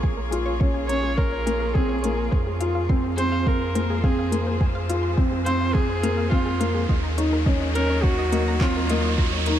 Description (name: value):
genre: piano and strings electronica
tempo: 105 BPM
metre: 4/4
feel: straight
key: unclear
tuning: A4 = 440 Hz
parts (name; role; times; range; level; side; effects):
- warm viola; melody; 0.0-9.2 s; F4 to Db5; -29 LUFS; right 1 dB; shimmer reverb
- rich string quartet; sustained chords; 0.0-9.6 s; Eb3 to Db5; -33 LUFS; equal; sidechain pumping, shimmer reverb
- analog pluck; arpeggios; 0.0-9.5 s; Ab4 to F6; -35 LUFS; left 3 dB; chorus, cassette tape, sidechain pumping, ping-pong delay, shimmer reverb
- round analog bass; bass; 0.0-9.6 s; Bb1 to F2; -27 LUFS; equal; sidechain pumping
- electronic kick drum; drums; 0.0-9.3 s; none; -22 LUFS; equal; none
- riser; sound effects; 2.3-9.6 s; none; -34 LUFS; right 2 dB; none
- felt-muted upright piano; riff; 0.3-9.6 s; Bb3 to F4; -26 LUFS; left 1 dB; shimmer reverb
- organic electronic drum kit; drums; 0.3-9.6 s; handclaps, hi-hat, toms; -36 LUFS; left 1 dB; high-pass filter on hats, high-pass filter on toms, high-pass filter on snare, high-pass filter on room
room: light reverb, digital ambience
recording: dark, warm production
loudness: -20 LUFS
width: side -10 dB against mid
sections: 0.0-9.6 A section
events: build-up 0.0-9.6; riser 2.3-9.6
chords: 0.0 Bbm7; 2.3 Fm; 6.9 Ebm7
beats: | 0.04 0.61 1.18 1.75 | 2.32 2.90 3.47 4.04 | 4.61 5.18 5.75 6.32 | 6.89 7.47 8.04 8.61 | 9.18